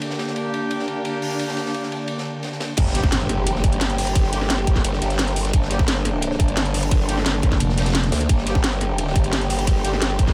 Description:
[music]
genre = dark technical drum and bass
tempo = 174 BPM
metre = 4/4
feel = straight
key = G minor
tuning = A4 = 436 Hz
[part]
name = dark studio string section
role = sustained chords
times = 0.0-10.3 s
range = D3 to G4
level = -29 LUFS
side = equal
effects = vintage 12-bit sampler grit, sidechain pumping
[part]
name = mellow brass ensemble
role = stabs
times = 0.0-9.9 s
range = Bb3 to G4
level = -33 LUFS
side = equal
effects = low-pass filter, digital delay
[part]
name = crunchy breakbeat drum kit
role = drums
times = 0.0-10.3 s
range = hi-hat, ride cymbal, snare drum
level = -34 LUFS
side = equal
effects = high-pass filter on cymbals, high-pass filter on hats, high-pass filter on snare, high-pass filter on room
[part]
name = growl bass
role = bass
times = 2.8-10.3 s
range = G1 to D2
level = -26 LUFS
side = equal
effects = chorus, tube saturation
[part]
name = drum and bass drum kit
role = drums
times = 2.8-10.3 s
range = crash cymbal, hi-hat, snare drum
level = -27 LUFS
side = equal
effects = none
[part]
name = electronic kick drum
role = drums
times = 2.8-10.3 s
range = none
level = -21 LUFS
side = equal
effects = none
[part]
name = impact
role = sound effects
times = 2.8-4.2 s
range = none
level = -31 LUFS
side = equal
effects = none
[part]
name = growling FM bass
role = bass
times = 7.6-8.1 s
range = F1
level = -22 LUFS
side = equal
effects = none
[sound]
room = studio reverb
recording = none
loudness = -21 LUFS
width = mono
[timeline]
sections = 0.0-2.8 A section; 2.8-10.3 B section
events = drop 2.8-10.3; impact 2.8-4.2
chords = 0.0 Gm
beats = | 0.02 0.36 0.71 1.05 | 1.40 1.74 2.09 2.43 | 2.78 3.12 3.47 3.81 | 4.16 4.50 4.84 5.19 | 5.54 5.88 6.22 6.57 | 6.91 7.26 7.60 7.95 | 8.29 8.64 8.98 9.33 | 9.67 10.02

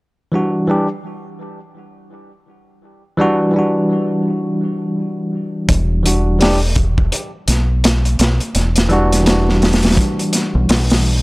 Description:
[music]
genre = trip hop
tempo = 84 BPM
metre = 4/4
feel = swing 60% on 16ths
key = E minor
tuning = A4 = 441 Hz
[part]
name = bell-like tine electric piano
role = accompaniment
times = 0.3-11.2 s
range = E3 to G4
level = -17 LUFS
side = equal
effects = harmonic tremolo, vintage 12-bit sampler grit, tape echo
[part]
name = deep dub fingered electric bass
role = bass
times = 5.7-11.2 s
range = E1 to B1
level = -16 LUFS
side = equal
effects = tube saturation
[part]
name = crunchy breakbeat drum kit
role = drums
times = 5.7-11.0 s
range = hi-hat, kick drum, snare drum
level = -16 LUFS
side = equal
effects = none
[sound]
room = small room ambience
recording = dry, gritty hardware recording, transformer saturation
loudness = -13 LUFS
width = side -24 dB against mid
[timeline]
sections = 0.0-11.2 A section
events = none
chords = 0.0 Em9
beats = 0.69 1.41 2.12 | 2.83 3.55 4.26 4.98 | 5.69 6.41 7.12 7.83 | 8.55 9.26 9.98 10.69

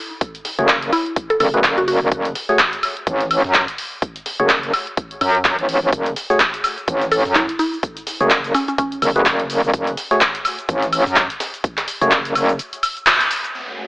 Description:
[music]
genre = bass house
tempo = 126 BPM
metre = 4/4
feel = swing 57% on 16ths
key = F# minor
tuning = A4 = 439 Hz
[part]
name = big-room dance drum kit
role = drums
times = 0.2-13.5 s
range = cabasa, handclaps, hi-hat, woodblock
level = -18 LUFS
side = equal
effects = low-pass filter on hats, low-pass filter on cymbals, low-pass filter on snare, low-pass filter on perc
[part]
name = breakbeat sampler-style drum kit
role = drums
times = 0.2-13.4 s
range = hi-hat, snare drum, tambourine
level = -30 LUFS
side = equal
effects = none
[part]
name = electronic kick drum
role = drums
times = 0.2-12.2 s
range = none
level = -23 LUFS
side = equal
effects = none
[part]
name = percussive organ stab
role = stabs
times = 0.6-12.1 s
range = A3 to C#5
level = -21 LUFS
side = equal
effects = chorus, vintage 12-bit sampler grit, sidechain pumping, dub echo
[part]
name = metallic wobble bass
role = bass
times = 0.6-12.6 s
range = F#1 to F#2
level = -18 LUFS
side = equal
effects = chorus, overdrive, sidechain pumping
[part]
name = mallet-like synth pluck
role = melody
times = 0.9-2.0, 7.1-9.5 s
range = C#4 to A4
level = -21 LUFS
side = equal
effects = chorus, dub echo
[part]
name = dark analog pad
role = sustained chords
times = 13.5-13.9 s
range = A3 to F#5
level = -37 LUFS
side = right 1 dB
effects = chorus, sidechain pumping
[part]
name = downlifter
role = sound effects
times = 13.5-13.9 s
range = none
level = -29 LUFS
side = equal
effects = none
[part]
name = ethereal airy pad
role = texture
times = 13.7-13.9 s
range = A3 to G#5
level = -35 LUFS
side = left 1 dB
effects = ensemble chorus, built-in reverb, sidechain pumping
[sound]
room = moderate lush hall reverb, RT60 1.7 s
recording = AM radio sound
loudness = -16 LUFS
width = side -24 dB against mid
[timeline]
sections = 0.0-13.5 A section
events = kick drops out 12.6-13.5; band accent 13.1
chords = 0.0 F#madd9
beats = | 0.21 0.69 1.16 1.64 | 2.12 2.59 3.07 3.54 | 4.02 4.50 4.97 5.45 | 5.93 6.40 6.88 7.35 | 7.83 8.31 8.78 9.26 | 9.73 10.21 10.69 11.16 | 11.64 12.12 12.59 13.07 | 13.54

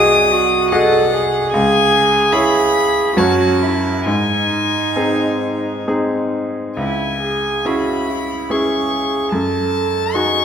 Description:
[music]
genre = classical, slow romantic movement for piano trio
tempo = 65-76 BPM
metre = 3/4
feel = rubato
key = C# minor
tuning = A4 = 437 Hz
[part]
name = rich violin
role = melody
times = 0.0-10.4 s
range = F#5 to D#6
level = -19 LUFS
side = left 5 dB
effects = none
[part]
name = warm cello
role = second line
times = 0.0-10.4 s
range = D#4 to A4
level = -18 LUFS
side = right 4 dB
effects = none
[part]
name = bright grand piano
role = accompaniment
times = 0.0-10.4 s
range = B#1 to D#5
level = -18 LUFS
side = left 1 dB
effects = none
[sound]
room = wet recital hall reverb, RT60 1.5 s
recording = none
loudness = -14 LUFS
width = side -8 dB against mid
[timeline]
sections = 0.0-10.4 A section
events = none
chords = 0.0 G#7/B#; 1.5 C#m; 3.2 F#m; 4.0 G#; 6.8 C#m; 9.3 D#dim/F#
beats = 0.71 | 1.52 2.31 3.16 | 4.05 4.95 5.86 | 6.76 7.65 8.50 | 9.32 10.14

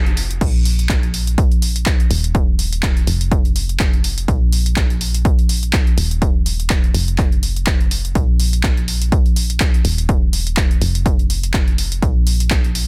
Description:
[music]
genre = piano house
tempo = 124 BPM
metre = 4/4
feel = swing 56% on 16ths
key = unclear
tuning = A4 = 442 Hz
[part]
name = solid FM bass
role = bass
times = 0.0-12.9 s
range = Eb1 to Bb1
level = -22 LUFS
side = equal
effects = sidechain pumping
[part]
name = punchy analog drum machine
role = drums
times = 0.1-12.9 s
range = crash cymbal, handclaps, hi-hat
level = -25 LUFS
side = equal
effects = overdrive
[part]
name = electronic kick drum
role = drums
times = 0.4-12.6 s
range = none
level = -18 LUFS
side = equal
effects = overdrive
[sound]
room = little or no reverb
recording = dense, heavily limited modern master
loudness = -17 LUFS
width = mono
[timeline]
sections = 0.4-12.9 A section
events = band accent 0.0; drop 0.4-12.9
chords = none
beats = | 0.41 0.90 1.38 1.86 | 2.35 2.83 3.31 3.80 | 4.28 4.77 5.25 5.74 | 6.22 6.70 7.19 7.67 | 8.15 8.64 9.12 9.61 | 10.09 10.57 11.06 11.54 | 12.03 12.51

